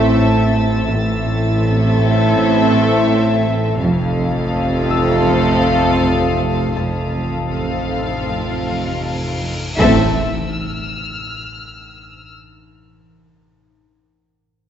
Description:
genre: cinematic, suspense film score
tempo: 82 BPM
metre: 4/4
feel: straight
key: A minor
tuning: A4 = 440 Hz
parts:
  - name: rich studio violin section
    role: melody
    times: 0.0-10.2 s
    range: E5 to F5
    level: -23 LUFS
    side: left 4 dB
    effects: none
  - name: warm symphonic violin section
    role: second line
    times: 0.0-10.2 s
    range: A4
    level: -24 LUFS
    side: left 2 dB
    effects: none
  - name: dark symphonic viola section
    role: accompaniment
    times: 0.0-10.2 s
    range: C4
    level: -25 LUFS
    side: right 3 dB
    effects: none
  - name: clear trombone section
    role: sustained chords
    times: 0.0-10.1 s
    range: A2 to A3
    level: -24 LUFS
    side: right 2 dB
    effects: none
  - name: dark French horn section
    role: sustained chords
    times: 0.0-10.1 s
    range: C4 to F4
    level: -24 LUFS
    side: left 4 dB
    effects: none
  - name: dark chamber cello section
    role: riff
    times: 0.0-9.6 s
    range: F2 to A3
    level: -28 LUFS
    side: right 2 dB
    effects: none
  - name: warm symphonic cello section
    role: bass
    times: 0.0-10.2 s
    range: F2 to A2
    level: -22 LUFS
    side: right 2 dB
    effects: none
  - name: warm symphonic double bass section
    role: bass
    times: 0.0-10.2 s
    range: F1 to A1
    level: -20 LUFS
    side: right 2 dB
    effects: none
  - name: metallic inharmonic drone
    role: drone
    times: 0.0-10.2 s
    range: A1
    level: -29 LUFS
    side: left 1 dB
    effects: chorus, built-in reverb, phaser
  - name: Celtic harp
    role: texture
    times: 0.0-10.7 s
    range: C5 to E6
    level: -31 LUFS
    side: left 7 dB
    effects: none
  - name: warm studio violin section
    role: texture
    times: 0.0-12.3 s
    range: A5 to A6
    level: -30 LUFS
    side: left 2 dB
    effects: none
  - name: cymbal swell and impact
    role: sound effects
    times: 8.5-12.7 s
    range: none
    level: -29 LUFS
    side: left 1 dB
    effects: none
  - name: timpani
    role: percussion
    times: 9.8-10.1 s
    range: A2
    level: -24 LUFS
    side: equal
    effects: none
room: wet scoring stage reverb, RT60 1.9 s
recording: worn, warbling old tape, cassette tape, warbly pitch drift, nothing above 8.0 kHz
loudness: -14 LUFS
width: side -9 dB against mid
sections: 0.0-9.8 A section; 9.8-12.7 B section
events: cymbal swell 8.5-9.8; impact 9.8-12.7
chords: 0.0 Am; 3.8 F; 9.8 Am

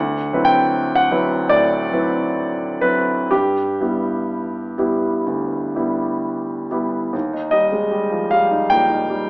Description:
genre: classical, impressionist solo piano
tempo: 60-79 BPM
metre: 4/4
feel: rubato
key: G major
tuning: A4 = 440 Hz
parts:
  - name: warm concert grand piano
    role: solo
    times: 0.0-9.3 s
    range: D2 to G5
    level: -16 LUFS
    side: equal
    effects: none
room: moderate recital hall reverb, RT60 1.3 s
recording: AM radio sound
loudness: -16 LUFS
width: side -27 dB against mid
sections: 0.0-7.1 A section; 7.1-9.3 B section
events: none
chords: 0.0 D13; 3.3 G6; 7.1 Ebadd9

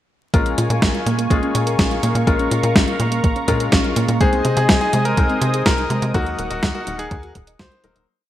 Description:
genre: italo disco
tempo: 124 BPM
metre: 4/4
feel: straight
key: Bb minor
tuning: A4 = 440 Hz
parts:
  - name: warm analog pad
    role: sustained chords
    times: 0.3-8.1 s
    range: Bb4 to Eb6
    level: -25 LUFS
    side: right 1 dB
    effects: chorus
  - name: soft round pluck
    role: arpeggios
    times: 0.3-8.1 s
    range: Ab3 to Eb5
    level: -25 LUFS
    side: right 2 dB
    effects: chorus, ping-pong delay
  - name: clear grand piano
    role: stabs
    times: 0.3-8.1 s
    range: Gb3 to C5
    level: -24 LUFS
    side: left 5 dB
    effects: vintage 12-bit sampler grit
  - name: tight sequencer bass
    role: bass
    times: 0.3-8.1 s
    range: Eb1 to C3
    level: -22 LUFS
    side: equal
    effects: none
  - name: clean 12-bit digital drum machine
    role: drums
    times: 0.3-8.1 s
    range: hi-hat, snare drum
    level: -20 LUFS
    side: equal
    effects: small room reverb, gated reverb
  - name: electronic kick drum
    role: drums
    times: 0.3-7.7 s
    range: none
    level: -19 LUFS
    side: equal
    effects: small room reverb
  - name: bright electric grand piano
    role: melody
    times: 4.2-8.0 s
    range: Gb4 to C5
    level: -23 LUFS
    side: left 2 dB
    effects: ping-pong delay
room: moderate plate reverb, RT60 1.6 s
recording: bright 1980s-style digital production, vinyl crackle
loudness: -16 LUFS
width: side -12 dB against mid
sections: 0.3-8.1 verse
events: fade-out 5.5-8.1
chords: 0.3 Bbm7; 4.2 Ab/C; 6.1 Ebm

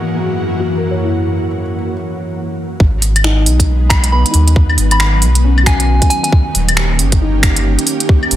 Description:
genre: future garage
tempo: 136 BPM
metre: 4/4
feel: swing 61% on 16ths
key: G# minor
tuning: A4 = 439 Hz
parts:
  - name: ethereal airy pad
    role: sustained chords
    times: 0.0-8.4 s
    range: F#2 to G4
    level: -19 LUFS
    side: right 1 dB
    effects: ensemble chorus, built-in reverb, vintage 12-bit sampler grit, sidechain pumping
  - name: felt-muted upright piano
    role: accompaniment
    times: 0.6-8.4 s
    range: B3 to C#5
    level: -23 LUFS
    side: left 4 dB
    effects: sidechain pumping, tape echo
  - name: soft dub sub bass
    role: bass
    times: 2.8-8.4 s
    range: D#1 to D#2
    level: -12 LUFS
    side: equal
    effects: sidechain pumping
  - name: electronic kick drum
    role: drums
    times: 2.8-8.2 s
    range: none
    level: -12 LUFS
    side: equal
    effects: overdrive
  - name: organic electronic drum kit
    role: drums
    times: 3.0-8.4 s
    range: claves, finger snaps, hi-hat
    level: -16 LUFS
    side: equal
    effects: overdrive, soft clipping on snare
  - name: soft synth bell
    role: melody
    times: 3.9-6.3 s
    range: G#5 to B5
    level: -20 LUFS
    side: equal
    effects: chorus, phaser, tape echo
room: light reverb, digital ambience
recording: dense, heavily limited modern master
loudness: -11 LUFS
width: side -12 dB against mid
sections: 0.0-2.8 A section; 2.8-8.4 B section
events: none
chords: 0.0 F#7; 2.8 G#m; 6.3 D#7

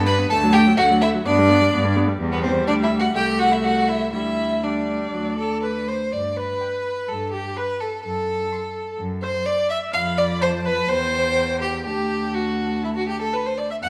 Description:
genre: quick classical-period movement for string quartet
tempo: 125 BPM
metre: 4/4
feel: straight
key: unclear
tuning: A4 = 440 Hz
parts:
  - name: rich violin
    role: second line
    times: 0.0-13.9 s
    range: B3 to F#5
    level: -26 LUFS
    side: equal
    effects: none
  - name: clear viola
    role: accompaniment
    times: 0.0-13.9 s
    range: F#3 to F#5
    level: -29 LUFS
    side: equal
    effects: none
  - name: clear cello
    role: bass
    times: 0.0-13.9 s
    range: C2 to G2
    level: -26 LUFS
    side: equal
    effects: none
  - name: rich violin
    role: melody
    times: 0.1-13.9 s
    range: B4 to C6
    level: -27 LUFS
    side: equal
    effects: none
room: wet stone room reverb, RT60 1.2 s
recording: none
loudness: -21 LUFS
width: mono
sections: 0.0-6.1 A section; 6.1-13.9 B section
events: none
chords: 0.3 D; 1.2 G; 2.2 Em; 3.1 Am/C; 4.1 Dsus4; 5.1 D; 6.1 G; 7.1 Gadd9; 8.0 F#dim; 9.9 Bm7b5/F; 10.9 C/E; 11.9 D

